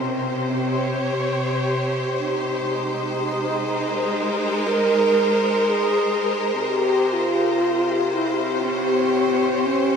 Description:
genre	ambient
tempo	61 BPM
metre	4/4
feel	straight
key	unclear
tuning	A4 = 435 Hz
part	breathy mellow wooden-headed alto flute	melody	0.0-10.0 s	C4 to Bb4	-22 LUFS	right 1 dB	ping-pong delay
part	clear studio string section	sustained chords	0.0-10.0 s	C3 to Db5	-22 LUFS	left 1 dB	none
room	wet shimmer reverb, RT60 7.5 s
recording	dark, warm production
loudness	-19 LUFS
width	side -6 dB against mid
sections	0.0-10.0 A section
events	none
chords	0.0 C5; 2.7 Abmaj9; 6.6 C5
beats	0.71 1.69 | 2.67 3.65 4.64 5.63 | 6.62 7.62 8.62 9.64

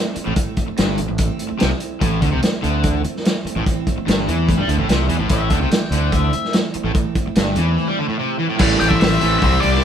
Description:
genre	classic rock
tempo	146 BPM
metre	4/4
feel	straight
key	A minor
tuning	A4 = 440 Hz
part	picked steel-string acoustic guitar	accompaniment	0.0-9.8 s	A2 to E4	-27 LUFS	right 5 dB	none
part	overdriven semi-hollow guitar	riff	0.2-9.8 s	G2 to C4	-22 LUFS	left 1 dB	none
part	growling fingered electric bass	bass	0.2-9.8 s	G1 to G2	-21 LUFS	equal	overdrive
part	vintage drum kit	drums	0.2-9.8 s	crash cymbal, hi-hat, kick drum, snare drum	-19 LUFS	equal	none
part	octave-fuzz lead guitar	second line	5.3-6.5 s	E5 to G5	-26 LUFS	left 7 dB	distortion
part	tight distorted guitar	riff	8.6-9.8 s	A2 to E4	-25 LUFS	equal	none
part	octave-fuzz lead guitar	melody	8.8-9.8 s	D5 to G5	-19 LUFS	left 2 dB	distortion, tape echo
part	octave-fuzz lead guitar	second line	8.8-9.8 s	G4 to D5	-26 LUFS	left 1 dB	distortion
room	moderate studio reverb, RT60 0.6 s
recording	band playing live in one room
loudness	-16 LUFS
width	side -8 dB against mid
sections	0.0-8.6 A section; 8.6-9.8 B section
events	break 7.8-8.6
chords	0.0 Am; 8.6 Am7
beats	| 0.38 0.79 1.20 1.61 | 2.02 2.43 2.85 3.25 | 3.67 4.08 4.49 4.90 | 5.31 5.72 6.13 6.54 | 6.96 7.37 7.78 8.19 | 8.60 9.01 9.42 9.83

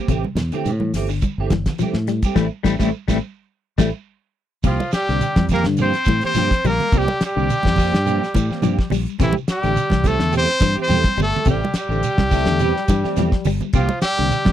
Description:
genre	afrobeat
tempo	106 BPM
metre	4/4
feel	swing 54% on 16ths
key	C mixolydian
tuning	A4 = 440 Hz
part	clean electric guitar	arpeggios	0.0-14.5 s	C3 to A3	-25 LUFS	left 12 dB	tremolo
part	clean electric guitar	stabs	0.0-14.4 s	E3 to G4	-26 LUFS	right 10 dB	ensemble chorus
part	fingered electric bass	bass	0.1-14.5 s	G1 to A2	-22 LUFS	equal	none
part	damped 70s drum kit	drums	0.1-14.5 s	crash cymbal, hi-hat, kick drum, snare drum	-20 LUFS	equal	none
part	congas	percussion	0.1-14.5 s	none	-26 LUFS	right 4 dB	none
part	shekere	percussion	0.1-14.5 s	none	-30 LUFS	right 7 dB	none
part	bright trumpet	melody	4.7-14.5 s	E4 to C5	-22 LUFS	left 2 dB	none
part	clear tenor saxophone	second line	4.7-14.5 s	E3 to C4	-28 LUFS	right 7 dB	none
part	mellow bass trombone	second line	12.3-13.6 s	G3 to A3	-26 LUFS	left 10 dB	none
room	little or no reverb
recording	dry, close 1970s-style studio recording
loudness	-17 LUFS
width	side -11 dB against mid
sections	0.0-4.7 A section; 4.7-14.5 B section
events	band accent 2.4-4.7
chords	0.1 Am7; 4.7 C7sus4; 9.2 Am7; 13.7 C7sus4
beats	| 0.09 0.66 1.23 1.80 | 2.37 2.94 3.51 4.08 | 4.65 5.22 5.79 6.36 | 6.92 7.49 8.06 8.63 | 9.20 9.76 10.33 10.90 | 11.47 12.04 12.61 13.17 | 13.74 14.31

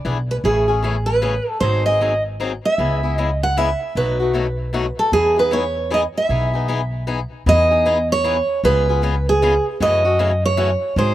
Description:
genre	acoustic string swing (jazz manouche)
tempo	154 BPM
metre	3/4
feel	swing 63% on 8ths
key	E major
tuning	A4 = 440 Hz
part	picked swing-style acoustic guitar	accompaniment	0.0-11.1 s	B2 to G#4	-24 LUFS	left 6 dB	slapback echo
part	upright bass	bass	0.0-11.1 s	G#1 to G#2	-21 LUFS	equal	none
part	picked steel-string acoustic guitar	melody	0.3-11.1 s	G#4 to F#5	-18 LUFS	right 2 dB	slapback echo
room	little or no reverb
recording	recorded outdoors, with no room sound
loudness	-16 LUFS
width	side -14 dB against mid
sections	0.0-7.5 A section; 7.5-11.1 B section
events	none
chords	0.4 Amaj7; 1.6 G#7; 2.8 C#m7; 4.0 B7; 5.1 Emaj7; 8.6 C#7; 9.8 F#m7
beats	0.05 | 0.44 0.83 1.22 | 1.61 2.00 2.39 | 2.78 3.17 3.56 | 3.95 4.34 4.73 | 5.12 5.51 5.90 | 6.29 6.68 7.07 | 7.46 7.85 8.24 | 8.63 9.02 9.41 | 9.80 10.19 10.58 | 10.97

